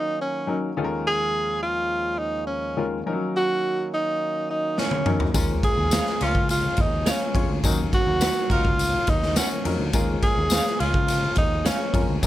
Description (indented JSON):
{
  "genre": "uptempo 1960s-style soul",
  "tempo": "105 BPM",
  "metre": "4/4",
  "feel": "straight",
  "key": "unclear",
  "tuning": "A4 = 440 Hz",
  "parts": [
    { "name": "warm tenor saxophone", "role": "melody", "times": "0.0-12.1 s", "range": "Db4 to Ab4", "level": "-24 LUFS", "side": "right 1 dB", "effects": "none" },
    { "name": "percussive tonewheel organ", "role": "sustained chords", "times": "0.0-12.3 s", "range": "Eb2 to Db4", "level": "-34 LUFS", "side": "right 1 dB", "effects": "overdrive, wide subtle chorus" },
    { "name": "warm baby grand piano", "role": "accompaniment", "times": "0.5-12.3 s", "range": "Eb3 to Db5", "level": "-28 LUFS", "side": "left 4 dB", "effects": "none" },
    { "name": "vibraphone with medium hard mallets", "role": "second line", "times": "4.5-12.1 s", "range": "Db5 to Ab5", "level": "-38 LUFS", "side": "left 2 dB", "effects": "none" },
    { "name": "raw garage drum kit", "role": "drums", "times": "4.8-12.3 s", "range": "kick drum, ride cymbal, snare drum, toms", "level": "-24 LUFS", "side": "equal", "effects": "none" },
    { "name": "warm horn section", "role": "second line", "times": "5.3-12.3 s", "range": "Bb3 to Bb4", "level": "-32 LUFS", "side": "equal", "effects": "none" },
    { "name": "picked electric bass", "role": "bass", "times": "5.3-12.3 s", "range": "Db2 to F2", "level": "-27 LUFS", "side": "equal", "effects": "none" },
    { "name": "tambourine", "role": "percussion", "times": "5.3-12.3 s", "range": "none", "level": "-31 LUFS", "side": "left 5 dB", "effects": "none" },
    { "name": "electric guitar through a small old amp", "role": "stabs", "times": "5.9-11.8 s", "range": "Ab4 to Gb5", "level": "-29 LUFS", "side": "right 3 dB", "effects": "tremolo" }
  ],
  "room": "light reverb",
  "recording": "none",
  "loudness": "-21 LUFS",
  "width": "side -14 dB against mid",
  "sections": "0.0-12.3 A section",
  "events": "drum fill 4.8-5.3",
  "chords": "0.0 Ebm7; 0.8 Bbm7/Eb; 3.1 Ebm7; 5.3 Bbm7; 7.6 Ebm7; 9.9 Bbm7"
}